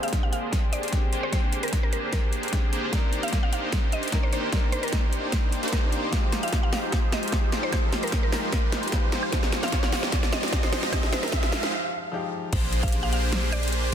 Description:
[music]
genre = future bass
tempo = 150 BPM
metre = 4/4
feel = half-time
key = F dorian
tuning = A4 = 440 Hz
[part]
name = mallet-like synth pluck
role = melody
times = 0.0-13.7 s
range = Bb4 to F5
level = -34 LUFS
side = equal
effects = chorus, sidechain pumping, digital delay
[part]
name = clear baby grand piano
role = accompaniment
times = 0.0-12.6 s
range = D3 to G5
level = -37 LUFS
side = left 4 dB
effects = sidechain pumping, digital delay
[part]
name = supersaw chords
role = riff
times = 0.0-13.9 s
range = Ab3 to C5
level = -30 LUFS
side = equal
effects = sidechain pumping, low-pass filter, digital delay
[part]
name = big-room dance drum kit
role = drums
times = 0.0-13.8 s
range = crash cymbal, hi-hat, snare drum, woodblock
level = -30 LUFS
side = equal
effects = none
[part]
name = riser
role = sound effects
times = 0.0-11.7 s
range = none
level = -36 LUFS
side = right 3 dB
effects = none
[part]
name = electronic kick drum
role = drums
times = 0.1-12.9 s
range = none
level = -25 LUFS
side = equal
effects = none
[part]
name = airy dreamy lead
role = arpeggios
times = 12.5-13.9 s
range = C5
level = -37 LUFS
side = right 1 dB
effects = chorus, sidechain pumping
[part]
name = warm 808-style bass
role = bass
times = 12.5-13.9 s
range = Bb1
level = -26 LUFS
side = equal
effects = sidechain pumping
[sound]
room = light reverb, digital ambience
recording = dense, heavily limited modern master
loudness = -23 LUFS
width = side -9 dB against mid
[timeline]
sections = 0.0-12.5 A section; 12.5-13.9 B section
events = build-up 0.0-12.5; drum fill 0.0-11.7; riser 0.0-11.7; break 11.7-12.5; drop 12.5-13.9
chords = 0.0 Bb13; 2.9 Cm9; 6.1 Fm9; 12.5 Bb13

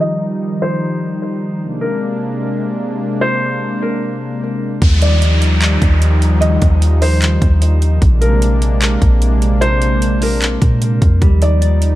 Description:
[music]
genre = hip hop, atmospheric cloud-rap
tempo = 150 BPM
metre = 4/4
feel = half-time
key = Eb major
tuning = A4 = 440 Hz
[part]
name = felt-muted upright piano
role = melody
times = 0.0-12.0 s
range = Bb4 to Eb5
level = -22 LUFS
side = left 1 dB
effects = low-pass filter, digital delay
[part]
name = warm analog pad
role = sustained chords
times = 0.0-12.0 s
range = C3 to Eb4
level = -19 LUFS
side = equal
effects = chorus, sidechain pumping, low-pass filter
[part]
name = soft 808-style bass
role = bass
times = 4.8-12.0 s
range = Bb1 to Bb2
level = -13 LUFS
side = equal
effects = none
[part]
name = trap drum kit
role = drums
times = 4.8-11.9 s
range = handclaps, hi-hat, kick drum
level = -16 LUFS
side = equal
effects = none
[part]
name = downlifter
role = sound effects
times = 4.8-8.0 s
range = none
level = -24 LUFS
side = equal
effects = none
[part]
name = mellow electric guitar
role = arpeggios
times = 11.2-12.0 s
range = G3 to D5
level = -22 LUFS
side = right 2 dB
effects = low-pass filter
[sound]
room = little or no reverb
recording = dark, warm production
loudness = -12 LUFS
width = side -15 dB against mid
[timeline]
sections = 0.0-4.8 A section; 4.8-12.0 B section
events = filter sweep 0.0-4.8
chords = 0.0 Ebadd9; 1.6 Bb9; 4.8 Ebmaj9; 8.0 Bb9; 11.2 Ebmaj9

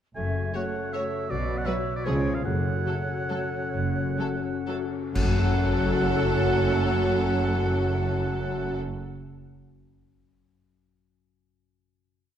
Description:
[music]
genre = classical, orchestral ballroom waltz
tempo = 119-174 BPM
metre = 3/4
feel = rubato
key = F# minor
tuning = A4 = 440 Hz
[part]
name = clear oboe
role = second line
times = 0.2-8.8 s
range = C#5 to G#5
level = -34 LUFS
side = right 2 dB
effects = none
[part]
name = mellow clarinet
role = second line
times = 0.2-8.8 s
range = F#4 to A4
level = -37 LUFS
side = left 2 dB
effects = none
[part]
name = mellow small flute group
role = second line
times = 0.2-8.8 s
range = G#4 to F#5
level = -37 LUFS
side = right 1 dB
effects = none
[part]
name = mellow bassoon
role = accompaniment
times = 0.2-8.8 s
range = E#3 to A3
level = -34 LUFS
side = right 2 dB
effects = none
[part]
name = concert harp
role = arpeggios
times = 0.2-9.6 s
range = F#2 to C#5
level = -33 LUFS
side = left 8 dB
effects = none
[part]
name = rich studio double bass section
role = bass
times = 0.2-8.8 s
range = F#1 to C#2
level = -31 LUFS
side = right 2 dB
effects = none
[part]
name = warm studio cello section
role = bass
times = 0.2-8.8 s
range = F#2 to C#3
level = -30 LUFS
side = right 2 dB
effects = none
[part]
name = clear studio violin section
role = melody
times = 0.5-8.8 s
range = G#4 to C#5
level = -37 LUFS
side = left 2 dB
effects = none
[part]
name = rich studio violin section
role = second line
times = 0.5-8.8 s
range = C#4 to F#4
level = -37 LUFS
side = left 1 dB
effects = none
[part]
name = warm studio viola section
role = accompaniment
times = 0.5-8.8 s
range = E#3 to A3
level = -35 LUFS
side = right 2 dB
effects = none
[part]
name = mellow French horn section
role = sustained chords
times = 0.5-8.8 s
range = F#3 to F#4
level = -33 LUFS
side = left 6 dB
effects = none
[part]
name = cymbal swell, clash cymbals and concert bass drum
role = percussion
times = 2.5-6.1 s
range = none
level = -33 LUFS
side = equal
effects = none
[sound]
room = moderate scoring stage reverb, RT60 1.5 s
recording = dark, warm production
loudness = -24 LUFS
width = side -9 dB against mid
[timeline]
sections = 0.2-5.1 A section; 5.1-8.0 final chord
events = slowing down 1.9-5.1; band accent 5.1-5.6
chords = 0.2 F#m; 1.3 B5; 2.1 C#; 2.5 F#m

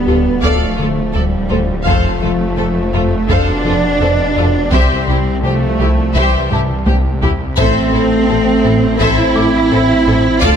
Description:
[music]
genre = cinematic, hybrid orchestral and electronic film score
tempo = 84 BPM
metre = 4/4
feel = straight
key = A minor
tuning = A4 = 440 Hz
[part]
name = dark French horn section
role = sustained chords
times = 0.0-10.6 s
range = B2 to D4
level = -19 LUFS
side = left 3 dB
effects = none
[part]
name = detuned saw bass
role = bass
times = 0.0-10.6 s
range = D1 to C2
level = -21 LUFS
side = equal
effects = none
[part]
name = rich symphonic cello section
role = bass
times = 0.0-10.6 s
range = G3 to F4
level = -17 LUFS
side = right 4 dB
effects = none
[part]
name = felt-muted upright piano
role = texture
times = 0.0-10.6 s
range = G4 to D6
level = -27 LUFS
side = left 3 dB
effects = digital delay
[part]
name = warm symphonic violin section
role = melody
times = 0.1-10.6 s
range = G4 to F5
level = -24 LUFS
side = left 4 dB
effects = none
[part]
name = rich studio violin section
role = second line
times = 0.1-10.6 s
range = E4 to D5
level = -23 LUFS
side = left 3 dB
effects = none
[part]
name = clear symphonic viola section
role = accompaniment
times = 0.1-10.6 s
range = G4 to A4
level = -23 LUFS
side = left 1 dB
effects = none
[part]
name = round analog bass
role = riff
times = 0.1-10.6 s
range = C2 to A3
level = -19 LUFS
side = left 2 dB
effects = none
[part]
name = warm symphonic double bass section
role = bass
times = 0.1-10.5 s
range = A1 to F2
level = -22 LUFS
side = right 4 dB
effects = none
[part]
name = taiko ensemble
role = drums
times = 0.4-10.6 s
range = none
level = -21 LUFS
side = equal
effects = none
[sound]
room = light reverb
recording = none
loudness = -11 LUFS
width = side -8 dB against mid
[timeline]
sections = 0.0-10.6 A section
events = drum fill 6.5-7.6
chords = 0.0 Dm; 1.9 F; 4.7 C; 7.6 Am

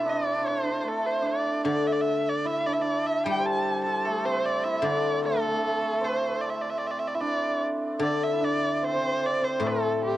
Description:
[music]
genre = chinese traditional, Chinese chamber ensemble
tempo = 75 BPM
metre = 2/4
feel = rubato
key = D shang mode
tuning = A4 = 440 Hz
[part]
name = warm erhu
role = melody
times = 0.0-10.2 s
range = G4 to A5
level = -28 LUFS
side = right 1 dB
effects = cassette tape, analog delay
[part]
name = hammered dulcimer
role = second line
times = 0.0-10.2 s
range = G3 to C5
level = -28 LUFS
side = right 2 dB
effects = cassette tape, analog delay
[part]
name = guzheng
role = accompaniment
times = 0.0-10.2 s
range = A2 to G3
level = -30 LUFS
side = left 5 dB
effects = cassette tape
[sound]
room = light reverb, small room ambience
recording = home recording on cassette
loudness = -24 LUFS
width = side -14 dB against mid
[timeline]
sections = 0.0-8.0 A section; 8.0-10.2 B section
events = none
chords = none

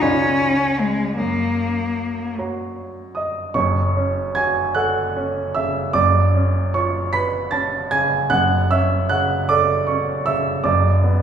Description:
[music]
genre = classical, romantic duo for cello and grand piano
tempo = 51 BPM (dotted quarters)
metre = 6/8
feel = rubato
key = F# major, F# minor from 3.6 s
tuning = A4 = 438 Hz
[part]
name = rich cello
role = melody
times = 0.0-2.3 s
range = G#3 to C#4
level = -19 LUFS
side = left 2 dB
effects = none
[part]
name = clear baby grand piano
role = accompaniment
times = 0.0-11.2 s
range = F#1 to B6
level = -18 LUFS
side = right 2 dB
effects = none
[sound]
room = wet recital hall reverb, RT60 1.7 s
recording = heard from further back in the room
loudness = -17 LUFS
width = side -8 dB against mid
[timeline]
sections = 0.0-3.6 A section; 3.6-11.2 B section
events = none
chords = 0.0 C#7b9; 1.2 F#; 3.6 F#m; 5.9 C#7/F#; 8.3 F#m; 10.6 G#m7b5/F# (rootless)

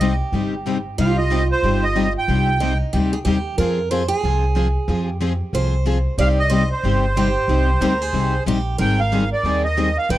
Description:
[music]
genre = acoustic string swing (jazz manouche)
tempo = 184 BPM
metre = 4/4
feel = swing 59% on 8ths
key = C minor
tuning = A4 = 439 Hz
[part]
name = accordion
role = melody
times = 0.0-2.8, 6.2-10.2 s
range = C5 to G5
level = -21 LUFS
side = right 2 dB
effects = light tremolo tuning
[part]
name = picked steel-string acoustic guitar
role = second line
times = 0.0-10.2 s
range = Eb4 to D5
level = -26 LUFS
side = right 5 dB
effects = slapback echo
[part]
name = picked plugged-in steel-string acoustic guitar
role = accompaniment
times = 0.0-10.2 s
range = C3 to Ab4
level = -29 LUFS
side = right 4 dB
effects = none
[part]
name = picked steel-string acoustic guitar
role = accompaniment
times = 0.0-10.2 s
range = C3 to Ab4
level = -23 LUFS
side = left 6 dB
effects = none
[part]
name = upright bass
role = bass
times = 0.0-10.2 s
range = G1 to F2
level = -21 LUFS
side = equal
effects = none
[sound]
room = small room ambience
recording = dry, close 1970s-style studio recording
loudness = -17 LUFS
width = side -14 dB against mid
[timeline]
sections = 0.0-10.2 A section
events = none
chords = 0.0 Cm; 3.6 Fm; 6.2 Cm; 8.8 Abmaj7

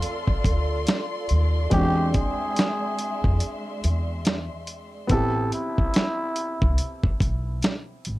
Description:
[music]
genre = lo-fi hip hop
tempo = 71 BPM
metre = 4/4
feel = swing 60% on 16ths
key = unclear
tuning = A4 = 440 Hz
[part]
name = trumpet with cup mute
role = melody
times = 0.0-7.0 s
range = E4 to A4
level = -30 LUFS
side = equal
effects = analog delay
[part]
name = felt-muted upright piano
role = accompaniment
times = 0.0-8.2 s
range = G#3 to G5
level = -31 LUFS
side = right 1 dB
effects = none
[part]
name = dark studio string section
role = sustained chords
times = 0.0-5.1 s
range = G#3 to C6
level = -31 LUFS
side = equal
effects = none
[part]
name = dusty soul sampler-style drum kit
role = drums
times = 0.0-8.2 s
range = handclaps, hi-hat, kick drum, snare drum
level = -23 LUFS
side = equal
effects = overdrive
[part]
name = upright bass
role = bass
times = 0.5-8.2 s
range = G#1 to F2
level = -24 LUFS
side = equal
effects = none
[sound]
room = light reverb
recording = none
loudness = -22 LUFS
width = side -18 dB against mid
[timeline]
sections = 0.0-8.2 A section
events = none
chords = 0.0 Dm7; 1.7 E7alt; 5.1 Am9

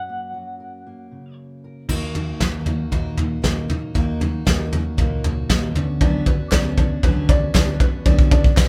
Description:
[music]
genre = indie folk with a building arrangement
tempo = 116 BPM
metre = 4/4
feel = straight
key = unclear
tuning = A4 = 440 Hz
[part]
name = electric guitar through a small old amp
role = melody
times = 0.0-1.3 s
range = F#5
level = -34 LUFS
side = equal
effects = tremolo
[part]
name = fingerpicked steel-string acoustic guitar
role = accompaniment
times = 0.0-7.8 s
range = F#2 to A#4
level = -37 LUFS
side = equal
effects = none
[part]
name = picked steel-string acoustic guitar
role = accompaniment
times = 1.9-8.7 s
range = D3 to F#4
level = -30 LUFS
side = equal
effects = none
[part]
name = picked electric bass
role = bass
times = 1.9-8.7 s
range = C#2 to D#2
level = -28 LUFS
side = equal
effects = none
[part]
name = soft brush drum kit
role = drums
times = 1.9-8.7 s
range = crash cymbal, kick drum, snare drum, toms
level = -21 LUFS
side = equal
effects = none
[part]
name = open-back banjo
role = arpeggios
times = 6.0-8.7 s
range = D4 to D5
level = -29 LUFS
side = equal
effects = none
[part]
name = group handclap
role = percussion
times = 6.5-8.7 s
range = none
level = -33 LUFS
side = equal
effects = none
[part]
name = tambourine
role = percussion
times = 6.5-8.7 s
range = none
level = barely audible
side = none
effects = none
[sound]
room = moderate small room reverb, RT60 0.5 s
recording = band playing live in one room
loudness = -20 LUFS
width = mono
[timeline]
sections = 0.0-1.9 A section; 1.9-8.7 B section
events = build-up 1.9-8.7; drum fill 1.9-8.7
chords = 0.0 F#; 1.9 D#m; 5.8 Bmadd9/D

